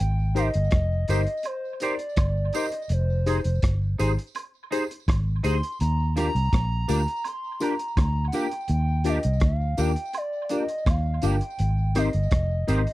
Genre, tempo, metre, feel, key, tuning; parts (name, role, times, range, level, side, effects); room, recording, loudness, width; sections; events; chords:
lovers rock reggae; 83 BPM; 4/4; straight; Eb major; A4 = 440 Hz
hollow clarinet-like synth lead; melody; 0.0-12.9 s; C5 to C6; -31 LUFS; equal; chorus, tape echo
vintage muted fingered electric bass; bass; 0.0-12.8 s; F1 to Eb2; -23 LUFS; equal
mellow tine electric piano; accompaniment; 0.3-12.8 s; C4 to C5; -27 LUFS; left 4 dB; medium stereo tremolo
twangy electric guitar; stabs; 0.4-12.9 s; Bb3 to C5; -30 LUFS; right 4 dB; ensemble chorus
crunchy breakbeat drum kit; drums; 0.4-12.9 s; hi-hat, kick drum, rim click; -25 LUFS; equal
tambourine and woodblock; percussion; 0.4-12.9 s; -40 LUFS; right 6 dB; tape echo
little or no reverb; dry, close 1970s-style studio recording; -22 LUFS; side -17 dB against mid
0.0-12.9 A section
0.0 Abmaj7; 2.9 Fm7; 5.8 Ebmaj7; 11.6 Abmaj7